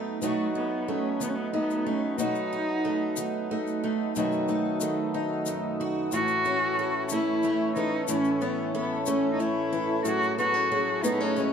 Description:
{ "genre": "acoustic folk duo or small band", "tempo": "61 BPM (dotted quarters)", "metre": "6/8", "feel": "straight", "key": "unclear", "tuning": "A4 = 441 Hz", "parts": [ { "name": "fingerpicked acoustic archtop guitar", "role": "accompaniment", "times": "0.0-11.5 s", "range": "F#2 to F#4", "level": "-30 LUFS", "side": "left 2 dB", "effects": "none" }, { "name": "mellow accordion", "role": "sustained chords", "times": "0.0-11.5 s", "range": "A2 to G#4", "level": "-35 LUFS", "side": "left 2 dB", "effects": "none" }, { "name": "picked twelve-string acoustic guitar", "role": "arpeggios", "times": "0.0-11.5 s", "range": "E3 to A4", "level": "-32 LUFS", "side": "right 6 dB", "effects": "none" }, { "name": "warm cello", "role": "melody", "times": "0.2-11.5 s", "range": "A3 to F#4", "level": "-28 LUFS", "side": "left 1 dB", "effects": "plate reverb" }, { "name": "tube shaker", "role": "percussion", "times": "0.2-11.5 s", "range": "none", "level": "-37 LUFS", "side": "left 8 dB", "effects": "none" } ], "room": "moderate studio reverb, RT60 0.6 s", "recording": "dark, warm production", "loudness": "-25 LUFS", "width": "side -7 dB against mid", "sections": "0.0-4.2 A section; 4.2-6.1 B section; 6.1-11.5 C section", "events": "none", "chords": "0.0 B7; 6.1 A; 10.1 F#madd9/A" }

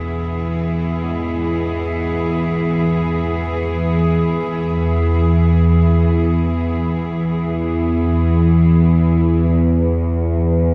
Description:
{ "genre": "dark ambient drone", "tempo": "free time", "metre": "none", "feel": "none", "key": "E major", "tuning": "A4 = 444 Hz", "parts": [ { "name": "warm chamber cello section", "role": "sustained chords", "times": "0.0-10.7 s", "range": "E2 to G#4", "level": "-26 LUFS", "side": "equal", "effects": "shimmer reverb" }, { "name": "carillon bells", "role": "arpeggios", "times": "0.0-6.8 s", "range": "G#2 to E4", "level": "-38 LUFS", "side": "equal", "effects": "none" }, { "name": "analog drone", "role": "drone", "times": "0.0-10.7 s", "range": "E2 to E3", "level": "-18 LUFS", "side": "equal", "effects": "chorus" } ], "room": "moderate lush hall reverb, RT60 2.7 s", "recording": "dreamy mix soaked in reverb", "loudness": "-17 LUFS", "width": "mono", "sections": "0.0-10.7 A section", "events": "fade-in on cello section 0.0-10.7", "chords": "0.0 E; 9.5 N.C." }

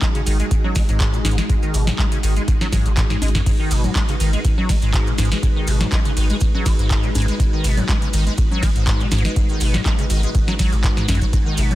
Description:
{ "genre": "acid house", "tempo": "122 BPM", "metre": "4/4", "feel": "swing 54% on 16ths", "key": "G# minor", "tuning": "A4 = 440 Hz", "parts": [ { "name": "string machine, full ensemble", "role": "sustained chords", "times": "0.0-11.8 s", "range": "G#3 to B4", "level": "-27 LUFS", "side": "equal", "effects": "ensemble chorus, sidechain pumping" }, { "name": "liquid acid bass", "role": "riff", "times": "0.0-11.8 s", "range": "G#1 to G#3", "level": "-24 LUFS", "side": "equal", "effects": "ensemble chorus, analog delay" }, { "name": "booming analog drum machine", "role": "drums", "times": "0.0-11.8 s", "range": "congas, crash cymbal, handclaps, hi-hat, ride cymbal, snare drum", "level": "-25 LUFS", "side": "left 1 dB", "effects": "none" }, { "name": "electronic kick drum", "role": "drums", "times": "0.0-11.4 s", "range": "none", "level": "-19 LUFS", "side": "equal", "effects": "none" }, { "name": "maracas", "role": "percussion", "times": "0.0-11.8 s", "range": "none", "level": "-34 LUFS", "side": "right 4 dB", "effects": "none" }, { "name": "saturated sub bass", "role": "bass", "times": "0.3-11.7 s", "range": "G#1", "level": "-20 LUFS", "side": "equal", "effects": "sidechain pumping" } ], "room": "little or no reverb", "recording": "dense, heavily limited modern master", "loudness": "-16 LUFS", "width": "side -15 dB against mid", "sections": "0.0-11.8 A section", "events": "drum fill 3.0-3.5", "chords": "0.0 G#m7" }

